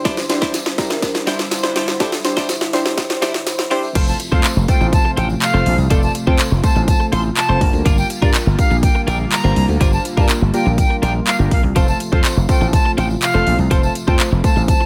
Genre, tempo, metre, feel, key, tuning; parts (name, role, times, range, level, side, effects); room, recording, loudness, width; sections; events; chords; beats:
dance-pop; 123 BPM; 4/4; straight; F major; A4 = 440 Hz
warm analog keys; accompaniment; 0.0-14.9 s; A3 to D5; -26 LUFS; equal; chorus, sidechain pumping
chorused pulse-width pad; sustained chords; 0.0-14.9 s; C3 to C5; -28 LUFS; equal; sidechain pumping
twelve-string electric guitar; riff; 0.0-14.8 s; G3 to C5; -28 LUFS; equal; analog chorus
house drum kit; drums; 0.1-14.8 s; crash cymbal, handclaps, hi-hat, kick drum, snare drum; -19 LUFS; equal
tambourine; percussion; 0.1-14.8 s; -34 LUFS; equal
slap bass with an envelope filter; bass; 4.0-14.7 s; F1 to G2; -20 LUFS; equal; sidechain pumping
bright reedy silver concert flute; melody; 4.1-14.9 s; D5 to C6; -24 LUFS; equal; sidechain pumping, delay
little or no reverb; high-pass filter; -16 LUFS; mono
0.0-4.0 A section; 4.0-14.9 B section
build-up 0.0-4.0; drum fill 0.0-4.0; drop 4.0-14.9
0.0 Cadd9; 4.0 F; 7.6 Gm7; 11.8 F
| 0.05 0.54 1.03 1.51 | 2.00 2.49 2.98 3.47 | 3.95 4.44 4.93 5.42 | 5.91 6.39 6.88 7.37 | 7.86 8.34 8.83 9.32 | 9.81 10.29 10.78 11.27 | 11.76 12.25 12.73 13.22 | 13.71 14.20 14.69